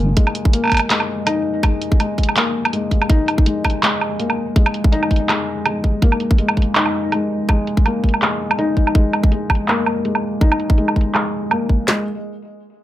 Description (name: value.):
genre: half-time drum and bass.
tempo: 164 BPM.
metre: 4/4.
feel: swing 56% on 16ths, half-time.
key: unclear.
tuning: A4 = 440 Hz.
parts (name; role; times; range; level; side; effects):
felt-muted upright piano; arpeggios; 0.0-12.0 s; G#3 to D#4; -20 LUFS; left 2 dB; low-pass filter, tape echo.
drum and bass drum kit; drums; 0.2-12.0 s; handclaps, kick drum, snare drum; -15 LUFS; equal; none.
drum and bass drum kit; drums; 0.2-11.6 s; handclaps, hi-hat, woodblock; -19 LUFS; right 2 dB; low-pass filter on hats, low-pass filter on perc, low-pass filter on snare, low-pass filter on room.
room: light reverb.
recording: none.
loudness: -15 LUFS.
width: side -13 dB against mid.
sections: 0.0-11.9 A section.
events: break 0.0; filter sweep on drum 0.0-11.9; filter sweep on felt piano 0.0-11.9.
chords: none.